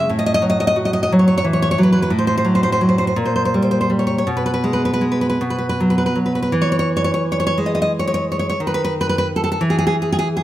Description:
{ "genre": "romantic piece for solo classical guitar", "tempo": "51-62 BPM (dotted quarters)", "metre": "6/8", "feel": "rubato", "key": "E major", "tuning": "A4 = 439 Hz", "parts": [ { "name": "nylon-string guitar", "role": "solo", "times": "0.0-10.4 s", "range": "A2 to D#5", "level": "-15 LUFS", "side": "equal", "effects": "none" } ], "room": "moderate recital hall reverb, RT60 1.6 s", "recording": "close, detailed microphones", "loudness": "-15 LUFS", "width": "side -14 dB against mid", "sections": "0.0-6.6 A section; 6.6-10.4 B section", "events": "none", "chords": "0.1 F#m7/A; 2.1 Am6; 3.1 A#m69; 4.3 G#m/B; 5.4 B5; 6.6 E; 8.6 N.C." }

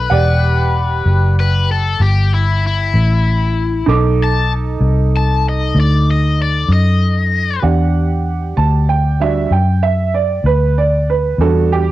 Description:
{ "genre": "slow blues", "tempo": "64 BPM (dotted quarters)", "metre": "12/8", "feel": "straight", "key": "E minor", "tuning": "A4 = 439 Hz", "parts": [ { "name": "cranked stack guitar", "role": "melody", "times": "0.0-7.6 s", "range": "E4 to A5", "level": "-19 LUFS", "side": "left 6 dB", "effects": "overdrive, cassette tape" }, { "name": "clear upright piano", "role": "accompaniment", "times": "0.0-11.9 s", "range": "G3 to D6", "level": "-19 LUFS", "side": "right 6 dB", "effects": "cassette tape" }, { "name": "vintage muted fingered electric bass", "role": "bass", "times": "0.0-11.9 s", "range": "E1 to F#2", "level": "-14 LUFS", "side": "equal", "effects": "none" } ], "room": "studio ambience", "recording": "home recording on cassette, nothing above 10.4 kHz", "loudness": "-12 LUFS", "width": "side -15 dB against mid", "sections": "0.0-7.6 A section; 7.6-11.9 A section", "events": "overdriven electric guitar solo 0.0-7.6; upright piano solo 7.6-11.9", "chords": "0.1 Em9; 3.9 B7#9; 7.6 Em9" }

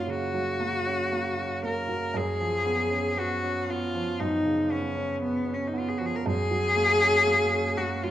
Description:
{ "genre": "classical, romantic duo for cello and grand piano", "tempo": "58 BPM", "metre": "4/4", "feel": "rubato", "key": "F# major", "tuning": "A4 = 440 Hz", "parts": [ { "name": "rich cello", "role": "melody", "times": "0.0-8.1 s", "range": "B3 to A#4", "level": "-25 LUFS", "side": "left 2 dB", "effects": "none" }, { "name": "warm concert grand piano", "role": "accompaniment", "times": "0.0-8.1 s", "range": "F#2 to C#4", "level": "-30 LUFS", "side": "right 3 dB", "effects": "none" } ], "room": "wet recital hall reverb, RT60 1.6 s", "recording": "dark, warm production", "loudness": "-24 LUFS", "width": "side -12 dB against mid", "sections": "0.0-8.1 A section", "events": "none", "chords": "0.0 F#; 2.1 C#7/F#; 6.3 F#" }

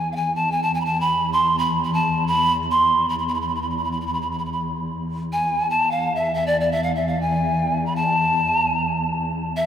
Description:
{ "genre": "Arabic maqam ensemble", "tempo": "free time", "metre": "none", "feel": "none", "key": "E maqam hijaz", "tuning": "A4 = 439 Hz", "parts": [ { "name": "polished pan flute", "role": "melody", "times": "0.0-9.7 s", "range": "D5 to C6", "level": "-20 LUFS", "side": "equal", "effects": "none" }, { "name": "dark studio cello section", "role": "drone", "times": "0.0-9.7 s", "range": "E2", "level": "-26 LUFS", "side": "equal", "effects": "none" } ], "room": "wet cathedral reverb, RT60 5.5 s", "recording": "in a vast, echoing space", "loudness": "-19 LUFS", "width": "side -9 dB against mid", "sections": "0.0-9.7 A section", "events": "none", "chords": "none" }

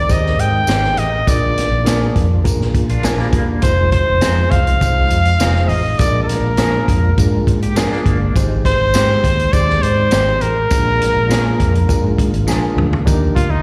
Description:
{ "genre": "uptempo 1960s-style soul", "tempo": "102 BPM", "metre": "4/4", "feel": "straight", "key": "unclear", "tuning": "A4 = 440 Hz", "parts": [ { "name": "clear trumpet", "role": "melody", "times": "0.0-13.6 s", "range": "Eb4 to G5", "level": "-20 LUFS", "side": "equal", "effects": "none" }, { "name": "percussive tonewheel organ", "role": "sustained chords", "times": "0.0-13.6 s", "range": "Eb3 to D5", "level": "-28 LUFS", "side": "equal", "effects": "chorus vibrato, slow rotary speaker" }, { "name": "vintage muted fingered electric bass", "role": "bass", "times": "0.0-13.6 s", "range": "Fb1 to Bb2", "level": "-19 LUFS", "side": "equal", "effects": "none" }, { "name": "reed electric piano", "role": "accompaniment", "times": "0.1-13.5 s", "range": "D4 to Eb5", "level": "-27 LUFS", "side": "equal", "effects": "overdrive, fast tremolo, slapback echo" }, { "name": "vintage drum kit", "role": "drums", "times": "0.1-13.5 s", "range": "hi-hat, kick drum, snare drum, toms", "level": "-21 LUFS", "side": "equal", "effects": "none" }, { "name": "tambourine", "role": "percussion", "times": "0.1-13.2 s", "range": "none", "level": "-33 LUFS", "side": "equal", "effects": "none" }, { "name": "electric guitar through a small old amp", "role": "stabs", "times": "0.7-12.6 s", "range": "Eb3 to Ab4", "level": "-29 LUFS", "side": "equal", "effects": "slapback echo" }, { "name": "clean electric guitar", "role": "riff", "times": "2.9-3.6, 7.6-8.3 s", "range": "G3 to G4", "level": "-27 LUFS", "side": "equal", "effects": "tremolo, slapback echo" } ], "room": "light reverb, studio reverb", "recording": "live gig heard through the venue's PA, recital hall reverb", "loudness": "-15 LUFS", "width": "mono", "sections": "0.0-13.1 A section", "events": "drum fill 12.5-13.1", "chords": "0.0 Abmaj7; 1.3 Bb7; 3.6 Fm7; 6.0 Bb7; 8.4 Abmaj7; 10.7 Bb7; 13.1 Ebmaj7" }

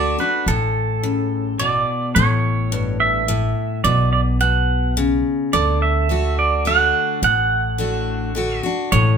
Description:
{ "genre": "honky-tonk and classic country", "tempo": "106 BPM", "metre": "3/4", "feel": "straight", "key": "D major", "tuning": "A4 = 441 Hz", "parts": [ { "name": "pedal steel guitar", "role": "second line", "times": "0.0-9.2 s", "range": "A4 to F#5", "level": "-20 LUFS", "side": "right 4 dB", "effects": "none" }, { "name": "picked steel-string acoustic guitar", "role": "accompaniment", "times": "0.0-9.2 s", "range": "G2 to F#4", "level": "-22 LUFS", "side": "left 3 dB", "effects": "none" }, { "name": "upright bass", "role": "bass", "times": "0.0-9.2 s", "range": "A1 to D2", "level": "-21 LUFS", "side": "equal", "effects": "none" } ], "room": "moderate studio reverb, RT60 0.9 s", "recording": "minimal, uncompressed stereo recording", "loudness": "-16 LUFS", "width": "side -6 dB against mid", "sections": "0.0-9.2 A section", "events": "pedal steel guitar solo 0.0-9.2", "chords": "0.0 D; 2.2 A; 3.8 B5; 5.5 D" }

